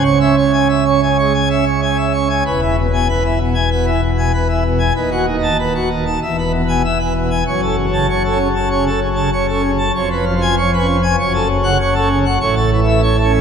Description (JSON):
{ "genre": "classical, organ toccata", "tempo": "97 BPM", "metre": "4/4", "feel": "straight", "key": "E major", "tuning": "A4 = 440 Hz", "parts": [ { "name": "pipe organ, plenum", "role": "solo", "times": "0.0-13.4 s", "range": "D#1 to A5", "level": "-13 LUFS", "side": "equal", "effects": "none" } ], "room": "wet church reverb, RT60 3.0 s", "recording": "none", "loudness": "-13 LUFS", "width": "side -7 dB against mid", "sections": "0.0-2.5 A section; 2.5-13.4 B section", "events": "none", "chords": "0.0 C#m; 2.5 E; 5.0 B7/D#; 6.2 E; 7.5 F#m; 9.9 C#7/E#; 11.2 F#m; 12.4 A" }